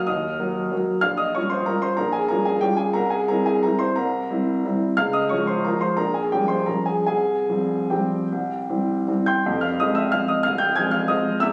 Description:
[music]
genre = classical, piano waltz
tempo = 142-201 BPM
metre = 3/4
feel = rubato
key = F minor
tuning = A4 = 440 Hz
[part]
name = clear upright piano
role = solo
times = 0.0-11.5 s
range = C1 to Ab6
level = -22 LUFS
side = equal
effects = none
[sound]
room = moderate scoring stage reverb, RT60 1.6 s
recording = recorded on a phone in the room, club reverb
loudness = -22 LUFS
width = mono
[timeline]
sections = 0.0-9.5 A section; 9.5-11.5 B section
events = none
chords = 0.0 Ebm; 1.0 Gm7b5/Bb; 3.0 C7; 5.0 Db; 6.0 Gm7b5/Bb; 7.1 Csus4; 8.3 C; 9.5 Fm

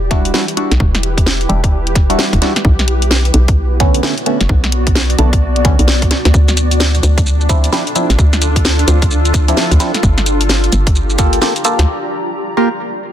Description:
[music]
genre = UK garage, two-step garage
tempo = 130 BPM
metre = 4/4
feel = swing 62% on 16ths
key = E minor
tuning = A4 = 440 Hz
[part]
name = hollow knocking FM bass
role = bass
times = 0.0-11.9 s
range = E1 to D2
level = -14 LUFS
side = equal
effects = tube saturation, sidechain pumping
[part]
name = granular cloud pad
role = texture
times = 0.0-11.9 s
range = B3 to D5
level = -20 LUFS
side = equal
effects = built-in reverb, sidechain pumping
[part]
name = percussive organ stab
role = stabs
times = 0.1-12.7 s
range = D3 to Bb4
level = -18 LUFS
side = right 1 dB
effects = chorus, phaser, tape echo
[part]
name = electronic kick drum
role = drums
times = 0.1-11.3 s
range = none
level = -13 LUFS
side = equal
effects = none
[part]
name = garage drum kit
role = drums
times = 0.1-11.9 s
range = hi-hat, shaker, snare drum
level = -17 LUFS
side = equal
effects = none
[sound]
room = little or no reverb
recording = dense, heavily limited modern master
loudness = -11 LUFS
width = side -10 dB against mid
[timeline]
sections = 0.0-13.1 A section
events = break 11.9-13.1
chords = 0.0 Em9; 2.6 Bm9; 6.1 Dm9; 10.0 Gm9

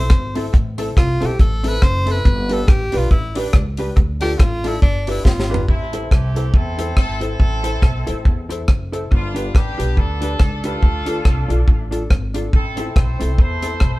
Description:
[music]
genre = ska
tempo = 140 BPM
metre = 4/4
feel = swing 58% on 8ths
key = A minor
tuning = A4 = 436 Hz
[part]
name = bright tenor saxophone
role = melody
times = 0.0-5.7 s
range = D4 to C5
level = -24 LUFS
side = equal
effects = none
[part]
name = hollow-body jazz guitar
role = accompaniment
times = 0.0-13.7 s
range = C4 to C5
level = -28 LUFS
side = right 2 dB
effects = analog delay
[part]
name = warm upright piano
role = stabs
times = 0.0-13.8 s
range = C4 to C5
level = -29 LUFS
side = left 3 dB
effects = none
[part]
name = upright bass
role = bass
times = 0.0-14.0 s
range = F#1 to E2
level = -22 LUFS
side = equal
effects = none
[part]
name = deep reggae drum kit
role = drums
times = 0.1-13.9 s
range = hi-hat, kick drum, rim click, snare drum, toms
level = -15 LUFS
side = equal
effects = none
[part]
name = clear horn section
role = melody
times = 5.7-14.0 s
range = A3 to C5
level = -26 LUFS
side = equal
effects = none
[sound]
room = moderate studio reverb, RT60 0.8 s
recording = band playing live in one room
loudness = -15 LUFS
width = side -19 dB against mid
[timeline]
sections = 0.0-5.7 A section; 5.7-14.0 B section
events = tenor saxophone solo 0.0-5.7; drum fill 5.3-5.7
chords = 0.0 Am; 2.3 G; 4.0 Dm; 4.8 G; 5.7 Am; 9.1 G; 10.8 Dm; 12.5 Am

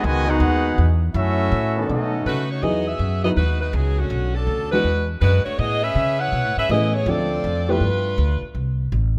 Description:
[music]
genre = jazz, big band swing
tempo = 162 BPM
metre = 4/4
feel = swing 65% on 8ths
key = E major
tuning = A4 = 439 Hz
[part]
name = clear trumpet section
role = melody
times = 0.0-2.5 s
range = C#4 to G#5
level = -27 LUFS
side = equal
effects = none
[part]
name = warm trombone section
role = second line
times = 0.0-2.4 s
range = B2 to F#4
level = -27 LUFS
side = equal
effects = none
[part]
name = upright bass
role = bass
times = 0.0-9.2 s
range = A1 to C#3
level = -23 LUFS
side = equal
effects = none
[part]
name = warm trombone section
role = sustained chords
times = 0.3-2.2 s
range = D#3 to A4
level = -29 LUFS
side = equal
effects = none
[part]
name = warm saxophone section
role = melody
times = 2.3-8.4 s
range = D3 to F#5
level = -25 LUFS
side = equal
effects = none
[part]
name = dark upright piano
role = accompaniment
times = 2.6-7.8 s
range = E3 to B4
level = -27 LUFS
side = equal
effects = none
[sound]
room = light reverb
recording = none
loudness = -21 LUFS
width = mono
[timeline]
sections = 0.0-2.6 A section; 2.6-9.2 B section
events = none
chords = 0.0 Emaj9; 1.1 F#m7; 1.9 B9; 2.6 Emaj9; 4.1 Bm11; 4.9 E9; 5.6 Amaj9; 7.1 Dm7; 7.8 G9; 8.6 N.C.

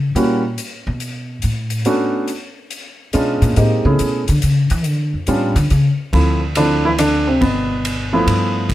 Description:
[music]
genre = jazz piano trio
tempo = 141 BPM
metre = 3/4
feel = swing 67% on 8ths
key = unclear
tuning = A4 = 442 Hz
[part]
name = upright bass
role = bass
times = 0.0-8.7 s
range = G1 to E3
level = -17 LUFS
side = equal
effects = none
[part]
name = warm concert grand piano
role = melody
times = 0.2-8.7 s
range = B2 to G#4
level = -16 LUFS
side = right 1 dB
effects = plate reverb
[part]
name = swinging big-band drum kit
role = drums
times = 0.2-8.7 s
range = hi-hat, kick drum, ride cymbal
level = -27 LUFS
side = left 1 dB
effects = none
[sound]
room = light reverb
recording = none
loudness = -15 LUFS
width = side -14 dB against mid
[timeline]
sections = 0.0-6.1 A section; 6.1-8.7 B section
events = upright bass solo 0.0-6.1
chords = 0.0 F#7b9; 1.0 Bm9; 2.3 C#7b9; 3.6 Amaj9; 4.8 G7#11; 5.7 N.C.; 6.1 Dm9; 7.4 G13

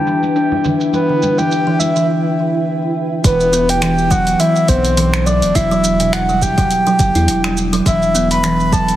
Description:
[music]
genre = organic downtempo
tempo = 104 BPM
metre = 4/4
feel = swing 55% on 16ths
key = E minor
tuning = A4 = 440 Hz
[part]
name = breathy flute-like synth lead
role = melody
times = 0.0-9.0 s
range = B4 to B5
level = -17 LUFS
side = equal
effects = chorus, digital delay
[part]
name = granular cloud pad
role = sustained chords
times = 0.0-3.2 s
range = E4 to G5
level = -24 LUFS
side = right 2 dB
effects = built-in reverb, sidechain pumping
[part]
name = kalimba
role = arpeggios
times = 0.1-8.8 s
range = B2 to E4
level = -17 LUFS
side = equal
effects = digital delay
[part]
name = deep house drum kit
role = drums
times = 0.1-9.0 s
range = finger snaps, hi-hat, shaker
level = -23 LUFS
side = right 2 dB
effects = none
[part]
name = congas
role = percussion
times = 0.2-1.9 s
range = none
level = -24 LUFS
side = right 2 dB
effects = none
[part]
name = round analog bass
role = bass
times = 3.2-9.0 s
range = E1 to E2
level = -20 LUFS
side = equal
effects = sidechain pumping
[part]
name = electronic kick drum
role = drums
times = 3.2-8.9 s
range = none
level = -17 LUFS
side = equal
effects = none
[sound]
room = moderate lush hall reverb, RT60 3.0 s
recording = heavily compressed radio sound, multiband compression, low-pass filter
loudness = -12 LUFS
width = side -13 dB against mid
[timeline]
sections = 0.0-3.2 A section; 3.2-9.0 B section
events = filter sweep 0.0-3.2; break 2.1-3.2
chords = 0.0 Em

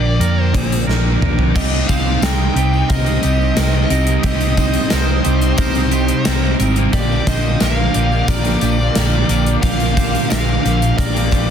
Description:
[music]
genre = rock, shoegaze and dream pop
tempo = 89 BPM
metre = 4/4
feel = straight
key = C minor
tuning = A4 = 440 Hz
[part]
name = bluesy overdriven lead guitar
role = melody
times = 0.0-11.5 s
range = C5 to G5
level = -24 LUFS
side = equal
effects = distortion, tape echo
[part]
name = airy breathy pad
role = sustained chords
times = 0.0-11.5 s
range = Bb4 to Eb6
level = -30 LUFS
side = right 1 dB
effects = chorus, phaser
[part]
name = twangy electric guitar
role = arpeggios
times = 0.0-11.5 s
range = G4 to C5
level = -27 LUFS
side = right 9 dB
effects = lush chorus, tape echo
[part]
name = clean electric guitar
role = riff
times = 0.0-11.5 s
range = Bb2 to G4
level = -22 LUFS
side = right 12 dB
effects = reverse reverb
[part]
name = fuzz guitar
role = riff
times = 0.0-11.5 s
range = Bb2 to C4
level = -23 LUFS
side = left 11 dB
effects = distortion, wide subtle chorus
[part]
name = hollow-body short-scale fingered electric bass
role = bass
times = 0.0-11.5 s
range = Ab1 to F2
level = -18 LUFS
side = left 1 dB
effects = none
[part]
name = gated 80s drum kit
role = drums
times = 0.2-11.5 s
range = crash cymbal, hi-hat, kick drum, snare drum, toms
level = -19 LUFS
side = equal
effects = none
[part]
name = crunchy overdriven guitar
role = riff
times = 1.5-11.5 s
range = Bb2 to Eb4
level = -25 LUFS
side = equal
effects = harmonic tremolo
[part]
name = tambourine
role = percussion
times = 1.6-11.5 s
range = none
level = -37 LUFS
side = left 13 dB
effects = none
[sound]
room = light reverb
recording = dense, heavily limited modern master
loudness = -13 LUFS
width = side -8 dB against mid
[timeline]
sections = 0.0-1.6 A section; 1.6-11.5 B section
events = drum fill 0.9-1.6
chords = 0.0 Bb; 1.6 Cm; 6.9 Bb6

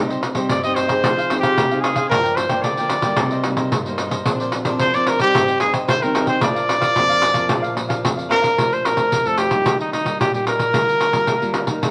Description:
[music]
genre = samba and choro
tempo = 111 BPM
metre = 4/4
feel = straight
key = Bb major from 8.6 s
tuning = A4 = 439 Hz
[part]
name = cavaquinho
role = accompaniment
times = 0.0-8.6 s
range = D4 to G5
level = -29 LUFS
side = equal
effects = none
[part]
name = nylon-string guitar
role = accompaniment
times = 0.0-11.9 s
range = F2 to Ab4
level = -28 LUFS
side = equal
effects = none
[part]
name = pandeiro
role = percussion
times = 0.1-11.9 s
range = none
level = -24 LUFS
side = equal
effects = none
[part]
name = clear trumpet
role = melody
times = 0.5-11.9 s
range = Eb4 to Eb5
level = -21 LUFS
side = equal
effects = none
[sound]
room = moderate studio reverb, RT60 0.8 s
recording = none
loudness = -19 LUFS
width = mono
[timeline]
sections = 0.0-8.6 A section; 8.6-11.9 B section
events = none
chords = 0.0 Cm; 1.0 Fm7; 2.1 Gm7; 3.2 Cm7; 4.3 Bbadd9; 5.3 Abmaj7; 6.4 Bb; 8.6 Bbmaj7; 9.7 Eb; 10.7 Bb6/D

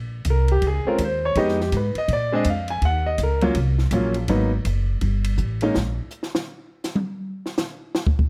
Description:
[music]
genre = jazz piano trio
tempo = 164 BPM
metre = 4/4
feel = swing 63% on 8ths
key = Bb minor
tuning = A4 = 440 Hz
[part]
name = upright bass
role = bass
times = 0.0-6.0 s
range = Gb1 to Bb2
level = -25 LUFS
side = equal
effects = none
[part]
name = compact cocktail drum kit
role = drums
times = 0.2-8.3 s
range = hi-hat, kick drum, ride cymbal, snare drum, toms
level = -29 LUFS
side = equal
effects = none
[part]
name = clear concert grand piano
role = melody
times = 0.3-5.7 s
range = Gb3 to Ab5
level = -24 LUFS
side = equal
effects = none
[sound]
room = light reverb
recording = none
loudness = -23 LUFS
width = mono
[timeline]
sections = 0.0-8.3 A section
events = grand piano solo 0.0-8.3; drum solo 5.8-8.3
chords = 0.0 Bbm7; 1.4 Fm7b5; 2.1 Bb7; 2.8 Ebm7; 4.3 Abm7; 5.0 Gsus2; 5.8 N.C.

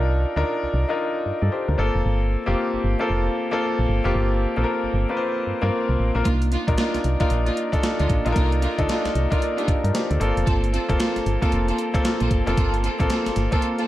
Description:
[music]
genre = R&B, new jack swing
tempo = 114 BPM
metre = 4/4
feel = swing 61% on 16ths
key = G minor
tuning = A4 = 438 Hz
[part]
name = clear concert grand piano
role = accompaniment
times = 0.0-13.9 s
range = Bb3 to D5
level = -24 LUFS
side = left 2 dB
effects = none
[part]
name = solid FM bass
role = bass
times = 0.0-13.5 s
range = F1 to G2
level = -22 LUFS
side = equal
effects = none
[part]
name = warm studio string section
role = stabs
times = 6.3-13.9 s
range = Bb3 to A4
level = -28 LUFS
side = right 2 dB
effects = digital delay
[part]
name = gated 80s digital drum machine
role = drums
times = 6.3-13.9 s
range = hi-hat, kick drum, snare drum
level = -24 LUFS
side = equal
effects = gated reverb, gated reverb snare
[sound]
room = light reverb, digital ambience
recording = dark, warm production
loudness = -20 LUFS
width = side -14 dB against mid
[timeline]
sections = 0.0-13.9 A section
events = grand piano fill 13.6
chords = 0.0 Cm11; 1.8 Gm11; 6.3 Cm11; 10.2 Gm11

